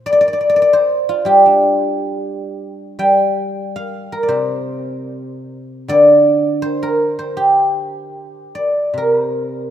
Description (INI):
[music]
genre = chinese traditional, Chinese solo plucked strings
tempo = 70-88 BPM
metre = 2/4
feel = rubato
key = G yu mode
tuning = A4 = 440 Hz
[part]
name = guzheng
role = solo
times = 0.0-9.7 s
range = C3 to G5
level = -14 LUFS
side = equal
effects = none
[sound]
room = moderate lush hall reverb, RT60 2.5 s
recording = rough home demo mix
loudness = -12 LUFS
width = side -10 dB against mid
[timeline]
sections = 0.0-9.0 A section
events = none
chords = none